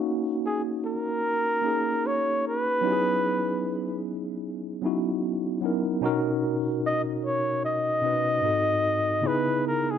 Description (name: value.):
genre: R&B.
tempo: 75 BPM.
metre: 4/4.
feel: swing 60% on 16ths.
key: B major.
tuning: A4 = 440 Hz.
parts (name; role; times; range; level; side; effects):
mellow tine electric piano; accompaniment; 0.0-10.0 s; G#2 to B4; -26 LUFS; equal; medium stereo tremolo.
breathy flugelhorn; melody; 0.5-10.0 s; G#4 to D#5; -25 LUFS; equal; none.
room: light reverb, small room reverb.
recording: none.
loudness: -24 LUFS.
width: side -8 dB against mid.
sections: 0.0-10.0 A section.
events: none.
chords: 0.0 D#m7; 2.8 F#13sus4; 6.0 Bmaj9; 8.4 G#7b9; 9.2 C#m9.